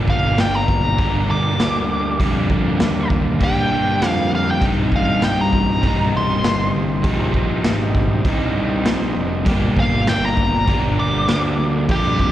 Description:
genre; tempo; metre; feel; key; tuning
blues rock power trio and southern rock; 99 BPM; 4/4; straight; C minor; A4 = 440 Hz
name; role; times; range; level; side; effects
tonewheel organ; sustained chords; 0.0-12.3 s; D4 to Eb5; -34 LUFS; right 3 dB; overdrive, lush chorus
crunchy overdriven guitar; riff; 0.0-12.3 s; C2 to G4; -21 LUFS; equal; slapback echo
fuzz picked electric bass; bass; 0.0-12.3 s; C1 to G2; -21 LUFS; equal; overdrive
smooth overdriven lead guitar; melody; 0.1-12.3 s; G4 to D6; -22 LUFS; equal; wah, slapback echo
raw garage drum kit; drums; 0.1-12.3 s; hi-hat, kick drum, snare drum; -21 LUFS; equal; none
room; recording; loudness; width
light reverb; live gig heard through the venue's PA, recital hall reverb; -16 LUFS; side -12 dB against mid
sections
0.0-12.3 A section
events
none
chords
0.0 Gm; 4.6 Cm; 9.5 Gm

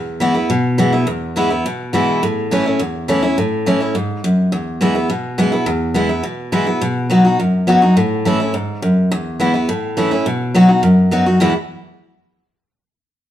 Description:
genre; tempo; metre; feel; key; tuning
rock; 209 BPM; 4/4; straight; E major; A4 = 438 Hz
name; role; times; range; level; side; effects
picked steel-string acoustic guitar; solo; 0.0-11.5 s; E2 to F#4; -14 LUFS; equal; none
room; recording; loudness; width
moderate large studio reverb, RT60 1.0 s; band playing live in one room; -14 LUFS; side -11 dB against mid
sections
0.0-11.4 A section; 11.4-12.6 B section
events
none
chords
0.0 E; 2.2 A; 4.5 E; 6.8 B; 8.0 A; 9.1 E; 9.7 A; 10.3 B; 11.4 E

